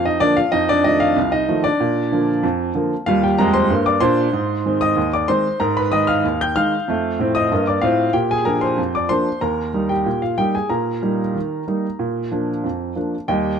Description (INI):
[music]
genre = ragtime piano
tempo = 94 BPM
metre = 2/4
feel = straight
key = Eb major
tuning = A4 = 440 Hz
[part]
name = clear upright piano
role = solo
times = 0.0-13.6 s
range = C2 to G6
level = -16 LUFS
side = equal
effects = none
[sound]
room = moderate spring reverb, RT60 2.4 s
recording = dark, warm production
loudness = -16 LUFS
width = side -7 dB against mid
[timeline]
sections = 0.0-13.3 A section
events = none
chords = 0.0 Bb; 0.5 F7; 1.8 Bb; 3.1 Eb; 4.3 Ab; 5.6 Abm; 6.9 F7; 8.1 Bb7; 9.4 Eb; 10.7 Eb/Bb; 12.0 Bb